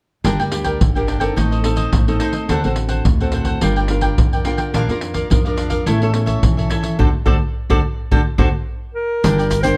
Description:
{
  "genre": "samba and choro",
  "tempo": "107 BPM",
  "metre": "4/4",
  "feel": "straight",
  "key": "unclear",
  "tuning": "A4 = 444 Hz",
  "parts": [
    { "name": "cavaquinho", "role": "accompaniment", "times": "0.2-9.8 s", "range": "D4 to G5", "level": "-26 LUFS", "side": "equal", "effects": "none" },
    { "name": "nylon-string guitar", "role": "accompaniment", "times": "0.2-9.8 s", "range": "A2 to Bb4", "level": "-25 LUFS", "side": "equal", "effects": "none" },
    { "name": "upright bass", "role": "bass", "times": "0.2-9.7 s", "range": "G1 to F2", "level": "-23 LUFS", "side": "equal", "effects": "none" },
    { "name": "surdo, pandeiro and tube shaker", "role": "percussion", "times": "0.2-9.8 s", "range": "none", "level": "-21 LUFS", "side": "equal", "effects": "none" },
    { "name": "warm clarinet", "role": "melody", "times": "8.9-9.8 s", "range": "Bb4 to C5", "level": "-21 LUFS", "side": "equal", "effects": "none" }
  ],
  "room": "light reverb",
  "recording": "dark, warm production",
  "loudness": "-18 LUFS",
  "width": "mono",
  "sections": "0.2-9.2 A section",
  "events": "band accent 7.0-9.2",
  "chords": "0.2 Gm; 1.4 Adim; 2.5 D7; 3.6 Gm7; 4.7 Bb; 5.9 A; 7.0 D7; 9.2 Gm"
}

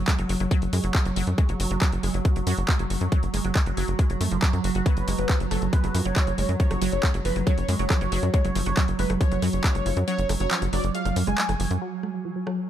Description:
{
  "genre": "psychedelic trance",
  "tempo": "138 BPM",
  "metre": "4/4",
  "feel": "straight",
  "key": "unclear",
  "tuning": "A4 = 440 Hz",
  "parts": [
    { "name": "evolving wavetable pad", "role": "sustained chords", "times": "0.0-12.7 s", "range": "F#3", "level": "-31 LUFS", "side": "right 4 dB", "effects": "chorus, built-in reverb, phaser, sidechain pumping" },
    { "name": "tight sequencer bass", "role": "bass", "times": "0.0-11.8 s", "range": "F#1 to F#2", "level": "-26 LUFS", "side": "equal", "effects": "none" },
    { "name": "wide unison pluck", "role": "riff", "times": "0.1-12.5 s", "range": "E#3 to F#4", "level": "-31 LUFS", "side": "moving between left 4 dB and right 6 dB", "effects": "phaser, auto-pan, sidechain pumping, tape echo" },
    { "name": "electronic kick drum", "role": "drums", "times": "0.1-9.7 s", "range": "none", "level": "-22 LUFS", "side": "equal", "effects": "overdrive" },
    { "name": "techno drum kit", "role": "drums", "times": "0.1-12.6 s", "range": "handclaps, hi-hat, rim click", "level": "-30 LUFS", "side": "equal", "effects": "overdrive" },
    { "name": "wide unison lead", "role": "melody", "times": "4.9-11.7 s", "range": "A4 to G#5", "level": "-30 LUFS", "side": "equal", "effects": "phaser, sidechain pumping, dub echo" }
  ],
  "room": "digital ambience",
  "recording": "dark, warm production",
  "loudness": "-22 LUFS",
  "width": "side -11 dB against mid",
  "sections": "0.0-11.8 A section",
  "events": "kick drops out 10.1-11.8",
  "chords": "0.0 F#5"
}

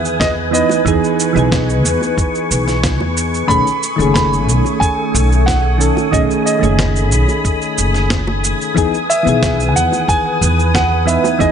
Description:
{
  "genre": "sunset chillout",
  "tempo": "91 BPM",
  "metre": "4/4",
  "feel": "straight",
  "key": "E major",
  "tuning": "A4 = 442 Hz",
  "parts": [
    { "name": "warm grand piano", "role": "melody", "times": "0.0-11.5 s", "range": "D#5 to B5", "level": "-19 LUFS", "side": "right 1 dB", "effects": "ping-pong delay" },
    { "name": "soft electric-piano-like synth keys", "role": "accompaniment", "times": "0.0-11.5 s", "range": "D#3 to B4", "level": "-18 LUFS", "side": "moving between left 7 dB and right 7 dB", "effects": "chorus, auto-pan, ping-pong delay" },
    { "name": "soft string machine", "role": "sustained chords", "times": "0.0-11.5 s", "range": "A3 to D#6", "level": "-20 LUFS", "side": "left 1 dB", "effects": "phaser, ensemble chorus" },
    { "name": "upright bass", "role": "bass", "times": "0.0-11.5 s", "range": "F#1 to E2", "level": "-17 LUFS", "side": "equal", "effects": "none" },
    { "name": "electronic cabasa and snare drum", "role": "drums", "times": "0.1-11.5 s", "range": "none", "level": "-21 LUFS", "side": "right 1 dB", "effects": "none" },
    { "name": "electronic kick drum", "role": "drums", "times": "0.2-11.5 s", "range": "none", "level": "-20 LUFS", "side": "equal", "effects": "none" },
    { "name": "bongos", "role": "percussion", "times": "0.7-11.4 s", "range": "none", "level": "-26 LUFS", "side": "right 1 dB", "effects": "none" }
  ],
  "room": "light reverb, small room ambience",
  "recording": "nothing above 10.7 kHz",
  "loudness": "-12 LUFS",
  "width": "side -8 dB against mid",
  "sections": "0.0-11.5 A section",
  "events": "none",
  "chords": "0.0 Emaj7; 3.5 B13; 8.8 Emaj7"
}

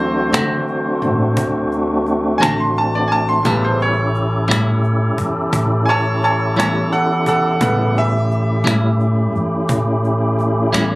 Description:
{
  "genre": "slow blues",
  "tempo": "58 BPM (dotted quarters)",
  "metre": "12/8",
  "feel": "straight",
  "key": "A mixolydian",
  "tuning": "A4 = 443 Hz",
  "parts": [
    { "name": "bright upright piano", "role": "accompaniment", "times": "0.0-9.3 s", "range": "C#3 to C6", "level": "-19 LUFS", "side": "right 1 dB", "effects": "none" },
    { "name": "tonewheel organ", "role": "sustained chords", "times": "0.0-11.0 s", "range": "A3 to A4", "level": "-19 LUFS", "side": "equal", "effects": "slow rotary speaker, overdrive, chorus vibrato" },
    { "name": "upright bass", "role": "bass", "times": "0.0-11.0 s", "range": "A1 to D3", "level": "-19 LUFS", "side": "equal", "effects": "none" },
    { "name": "clean electric guitar", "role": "accompaniment", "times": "0.3-10.9 s", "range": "A2 to F#4", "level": "-19 LUFS", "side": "left 1 dB", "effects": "tremolo" },
    { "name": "cajon", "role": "drums", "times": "0.3-10.9 s", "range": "none", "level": "-21 LUFS", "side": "equal", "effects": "none" }
  ],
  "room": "light reverb",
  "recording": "recorded on a phone in the room, club reverb, compression",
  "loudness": "-14 LUFS",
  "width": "side -21 dB against mid",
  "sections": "0.0-11.0 A section",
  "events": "upright piano solo 0.0-11.0",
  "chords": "0.0 D7; 3.4 A7"
}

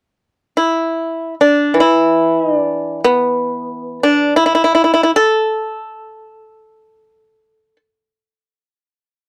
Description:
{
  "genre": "chinese traditional, Chinese solo plucked strings",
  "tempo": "free time",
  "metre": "none",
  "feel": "none",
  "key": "unclear",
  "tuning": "A4 = 439 Hz",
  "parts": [
    { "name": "pipa", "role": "solo", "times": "0.6-7.8 s", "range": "E3 to A4", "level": "-15 LUFS", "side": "equal", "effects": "none" }
  ],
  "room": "light reverb",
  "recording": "dry, close 1970s-style studio recording",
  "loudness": "-15 LUFS",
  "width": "mono",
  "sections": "0.0-9.3 A section",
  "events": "none",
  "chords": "none"
}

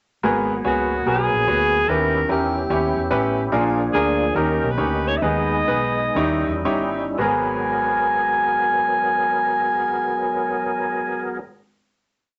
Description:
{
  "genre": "uptempo gospel",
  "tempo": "109-146 BPM",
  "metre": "4/4",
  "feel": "swing 65% on 8ths",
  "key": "unclear",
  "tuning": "A4 = 440 Hz",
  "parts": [
    { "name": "bright grand piano", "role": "accompaniment", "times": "0.2-11.4 s", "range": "G#1 to C#5", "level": "-25 LUFS", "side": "equal", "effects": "none" },
    { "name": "percussive tonewheel organ", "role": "sustained chords", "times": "0.2-11.4 s", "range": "E#3 to A#4", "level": "-28 LUFS", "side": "equal", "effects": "slow rotary speaker, overdrive, chorus vibrato" },
    { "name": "hollow-body short-scale fingered electric bass", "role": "bass", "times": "0.2-11.4 s", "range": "G1 to E2", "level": "-30 LUFS", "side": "equal", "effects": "none" },
    { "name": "breathy alto saxophone", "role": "melody", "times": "0.7-11.4 s", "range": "F#4 to G#5", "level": "-24 LUFS", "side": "equal", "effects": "none" }
  ],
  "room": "moderate small room ambience, RT60 0.5 s",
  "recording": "nothing above 7.9 kHz",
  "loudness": "-21 LUFS",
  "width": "mono",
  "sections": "0.2-7.2 breakdown; 7.2-11.6 final chord",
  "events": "slowing down 3.5-7.2",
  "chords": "0.2 G#m9; 1.9 D#7b9b13; 3.5 A#7; 4.4 D#7; 5.2 G#m/D#; 6.2 D#7b9; 7.2 G#m9"
}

